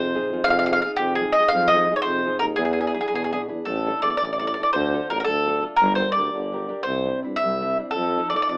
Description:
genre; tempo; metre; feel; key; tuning
italian folk, Italian serenade; 112 BPM (dotted quarters); 6/8; rubato; F minor; A4 = 440 Hz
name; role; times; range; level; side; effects
mandolin; melody; 0.0-8.6 s; G4 to F5; -21 LUFS; equal; none
nylon-string guitar; accompaniment; 0.0-8.6 s; B2 to Bb4; -29 LUFS; equal; none
warm tuba; bass; 0.0-8.6 s; G1 to G2; -27 LUFS; equal; none
room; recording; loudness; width
moderate studio ambience, RT60 0.5 s; AM radio sound; -19 LUFS; side -34 dB against mid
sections
0.0-3.7 A section; 3.7-8.6 B section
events
none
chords
0.0 Fm7; 2.6 E7; 3.7 Asus4; 4.7 Dm; 5.8 Gm; 6.9 Cadd9; 8.0 F7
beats
| 0.47 1.01 | 1.53 2.06 | 2.59 3.13 | 3.68 4.21 | 4.74 5.27 | 5.80 6.34 | 6.87 7.41 | 7.96 8.50

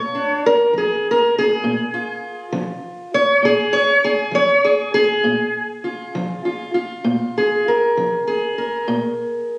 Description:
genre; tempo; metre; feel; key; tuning
acoustic country blues, solo or duo; 66 BPM (dotted quarters); 12/8; straight; unclear; A4 = 444 Hz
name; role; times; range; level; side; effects
fingerpicked steel-string acoustic guitar; solo; 0.0-9.6 s; Bb2 to Db5; -19 LUFS; equal; none
room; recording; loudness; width
wet booth ambience, RT60 0.2 s; recorded on a phone in the room, studio reverb; -19 LUFS; mono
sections
0.0-9.6 A section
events
steel-string acoustic guitar solo 0.0-9.6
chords
0.0 Bb7(no3)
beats
0.76 1.66 2.56 | 3.46 4.36 5.26 6.16 | 7.07 7.97 8.88

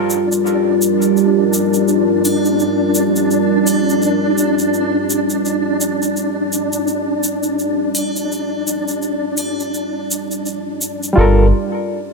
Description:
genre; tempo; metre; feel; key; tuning
trip hop; 84 BPM; 4/4; swing 58% on 16ths; G minor; A4 = 441 Hz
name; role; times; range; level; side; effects
dark analog pad; sustained chords; 0.0-11.5 s; G3 to D5; -18 LUFS; right 1 dB; chorus, phaser, vintage 12-bit sampler grit
flickering grainy texture; texture; 0.2-11.2 s; D4; -18 LUFS; left 1 dB; built-in reverb
egg shaker and triangle; percussion; 0.1-11.1 s; none; -23 LUFS; equal; none
barky reed electric piano; accompaniment; 11.1-11.5 s; G3 to Bb4; -19 LUFS; equal; tremolo, tape echo
deep dub fingered electric bass; bass; 11.2-11.5 s; G1; -12 LUFS; equal; none
room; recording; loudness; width
light reverb, digital ambience; none; -14 LUFS; side -2 dB against mid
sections
0.0-11.2 A section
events
filter sweep on analog synth pad 0.0-11.2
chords
0.0 Gm7; 11.2 Gm9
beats
0.45 1.16 1.88 | 2.59 3.31 4.02 4.74 | 5.45 6.16 6.88 7.59 | 8.31 9.02 9.73 10.45 | 11.16

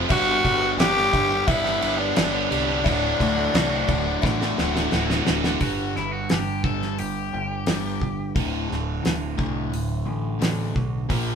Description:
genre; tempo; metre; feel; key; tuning
classic rock; 87 BPM; 4/4; straight; D major; A4 = 440 Hz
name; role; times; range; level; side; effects
bright tonewheel organ; sustained chords; 0.0-5.6 s; F#3 to D4; -36 LUFS; right 1 dB; none
crunchy overdriven guitar; riff; 0.0-11.3 s; D2 to G4; -30 LUFS; left 8 dB; none
crunchy overdriven guitar; riff; 0.0-11.3 s; D2 to G4; -28 LUFS; right 6 dB; phaser
crunchy overdriven guitar; riff; 0.0-5.6 s; D2 to G3; -30 LUFS; left 1 dB; none
growling picked electric bass; bass; 0.0-11.3 s; D1 to D2; -30 LUFS; equal; overdrive
growling tenor saxophone; melody; 0.1-4.9 s; D4 to G4; -23 LUFS; left 2 dB; none
damped 70s drum kit; drums; 0.1-11.3 s; crash cymbal, hi-hat, kick drum, snare drum; -25 LUFS; right 1 dB; none
cowbell; percussion; 0.1-5.1 s; none; -33 LUFS; left 7 dB; none
cranked stack guitar; second line; 5.6-8.3 s; E4 to A4; -31 LUFS; left 5 dB; overdrive
room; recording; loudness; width
moderate studio reverb, RT60 0.5 s; band playing live in one room; -20 LUFS; side -7 dB against mid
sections
0.0-5.6 A section; 5.6-11.3 B section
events
drum fill 4.2-5.6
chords
0.1 G; 2.9 D; 5.6 G5; 8.4 D5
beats
| 0.10 0.79 1.48 2.17 | 2.86 3.54 4.23 4.92 | 5.61 6.29 6.98 7.67 | 8.35 9.04 9.73 10.41 | 11.10

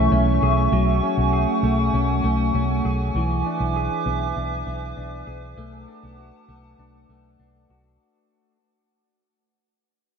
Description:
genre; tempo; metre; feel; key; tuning
dream pop; 99 BPM; 4/4; straight; B dorian; A4 = 445 Hz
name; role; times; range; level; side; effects
warbly tape-like pad; sustained chords; 0.0-8.0 s; A3 to D6; -24 LUFS; right 3 dB; chorus, built-in reverb, shimmer reverb
clean electric guitar; arpeggios; 0.0-8.6 s; E3 to G#4; -26 LUFS; left 5 dB; wide subtle chorus, shimmer reverb, digital delay
vintage muted fingered electric bass; bass; 0.0-8.0 s; B1; -23 LUFS; equal; none
room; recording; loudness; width
moderate huge ambient reverb, RT60 4.9 s; none; -19 LUFS; side -6 dB against mid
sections
0.0-8.0 A section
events
fade-out 0.0-8.0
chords
0.0 Amaj7/B; 0.7 F#madd9/B; 3.2 E7/B; 5.6 Bm7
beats
0.12 | 0.73 1.33 1.94 2.55 | 3.15 3.76 4.36 4.97 | 5.58 6.18 6.79 7.39

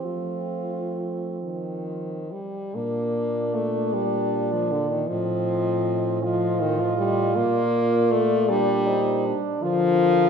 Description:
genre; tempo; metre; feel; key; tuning
classical, lyrical piece for horn quartet; 43-54 BPM (dotted quarters); 6/8; rubato; Bb major; A4 = 441 Hz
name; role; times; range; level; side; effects
clear French horn; melody; 0.0-10.3 s; F4 to Eb5; -30 LUFS; left 7 dB; none
warm French horn; second line; 0.0-10.3 s; C4 to F4; -27 LUFS; right 6 dB; none
warm French horn; accompaniment; 0.0-10.3 s; D3 to Bb3; -24 LUFS; left 3 dB; none
dark French horn; bass; 0.0-10.3 s; A2 to F3; -29 LUFS; right 4 dB; none
room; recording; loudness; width
moderate concert hall reverb, RT60 1.9 s; minimal, uncompressed stereo recording; -21 LUFS; side -6 dB against mid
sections
0.0-2.8 A section; 2.8-10.3 B section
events
none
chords
0.1 F; 2.8 Bb; 5.1 F7/A; 7.4 Bb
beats
| 0.05 1.44 | 2.76 3.95 | 5.10 6.24 | 7.37 8.51 | 9.63

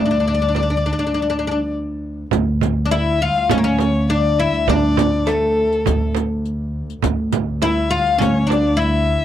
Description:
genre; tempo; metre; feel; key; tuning
Arabic maqam ensemble; 102 BPM; 4/4; straight; D maqam nahawand; A4 = 442 Hz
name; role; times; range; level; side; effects
oud; melody; 0.0-9.2 s; A3 to F4; -19 LUFS; left 2 dB; none
rich violin; second line; 0.0-9.2 s; A4 to F5; -24 LUFS; left 5 dB; none
upright bass; bass; 0.0-9.2 s; D2; -20 LUFS; equal; none
warm double bass; drone; 0.0-9.2 s; D2; -27 LUFS; equal; none
frame drum; percussion; 0.5-8.6 s; none; -22 LUFS; right 11 dB; none
riq; percussion; 2.3-8.9 s; none; -29 LUFS; left 13 dB; none
room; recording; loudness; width
little or no reverb; dry, close 1970s-style studio recording; -16 LUFS; side -11 dB against mid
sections
0.0-2.3 A section; 2.3-9.2 B section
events
stop 1.1-2.3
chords
none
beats
0.56 1.15 1.74 | 2.33 2.92 3.51 4.10 | 4.69 5.28 5.86 6.45 | 7.04 7.63 8.22 8.81

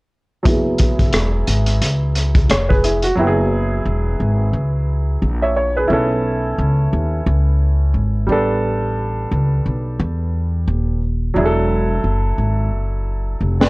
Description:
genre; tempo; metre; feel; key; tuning
hip hop, jazz-hop; 88 BPM; 4/4; swing 57% on 16ths; unclear; A4 = 441 Hz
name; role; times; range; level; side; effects
warm upright piano; accompaniment; 0.4-13.7 s; F#3 to E5; -20 LUFS; right 1 dB; low-pass filter, plate reverb
upright bass; bass; 0.5-13.7 s; D#1 to E2; -18 LUFS; equal; none
crunchy breakbeat drum kit; drums; 0.5-3.2, 13.6-13.7 s; hi-hat, kick drum, rim click, snare drum; -16 LUFS; equal; none
room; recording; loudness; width
light reverb; worn, warbling old tape, cassette tape, warbly pitch drift; -15 LUFS; side -24 dB against mid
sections
0.5-3.2 A section; 3.2-13.7 B section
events
filter sweep on upright piano 0.5-3.2; drum fill 12.7-13.7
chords
0.5 F#9sus4; 5.9 B9sus4; 8.3 A9sus4; 11.4 E9sus4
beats
| 0.45 1.14 1.82 2.50 | 3.18 3.86 4.54 5.23 | 5.91 6.59 7.27 7.95 | 8.63 9.32 10.00 10.68 | 11.36 12.04 12.73 13.41

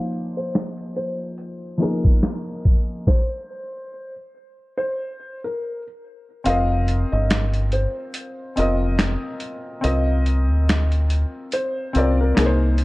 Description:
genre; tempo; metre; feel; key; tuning
lo-fi hip hop; 71 BPM; 4/4; swing 57% on 16ths; F dorian; A4 = 443 Hz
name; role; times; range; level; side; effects
dark upright piano; melody; 0.0-12.8 s; Bb4 to F5; -28 LUFS; equal; low-pass filter, tape echo
warm upright piano; accompaniment; 0.0-12.8 s; F3 to Eb5; -25 LUFS; left 2 dB; cassette tape, low-pass filter
boom bap sampler-style drum kit; drums; 0.1-12.8 s; finger snaps, hi-hat, kick drum, snare drum; -20 LUFS; equal; none
deep dub fingered electric bass; bass; 6.5-12.8 s; F1 to D2; -19 LUFS; equal; none
room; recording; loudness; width
light reverb, digital ambience; dark, warm production, low-pass filter; -19 LUFS; side -20 dB against mid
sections
0.0-6.5 A section; 6.5-12.8 B section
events
filter sweep 0.0-6.5; stop 3.1-6.5; kick muted 6.5-12.8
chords
0.0 Fm7; 3.1 N.C.; 6.5 Fsus2; 9.8 Cm9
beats
0.54 1.38 2.23 | 3.07 3.92 4.76 5.61 | 6.45 7.30 8.14 8.99 | 9.83 10.68 11.52 12.37

